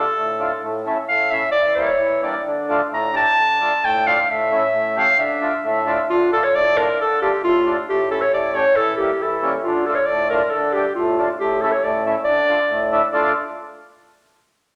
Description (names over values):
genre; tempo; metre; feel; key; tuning
klezmer; 135 BPM; 2/4; straight; D harmonic minor; A4 = 440 Hz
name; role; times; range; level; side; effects
mellow clarinet; melody; 0.0-13.3 s; F4 to Bb5; -20 LUFS; equal; none
mellow accordion; accompaniment; 0.0-13.3 s; A2 to G4; -24 LUFS; equal; none
room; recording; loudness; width
wet large studio reverb, RT60 1.4 s; none; -19 LUFS; mono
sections
0.0-6.1 A section; 6.1-13.1 B section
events
speeding up 0.0-14.0; clarinet solo 0.0-6.1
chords
0.0 Dm; 0.6 A; 1.5 Edim; 2.5 Dm; 4.3 A; 5.2 Dm; 7.9 A; 8.8 Edim; 9.6 Dm; 11.4 A; 12.3 Dm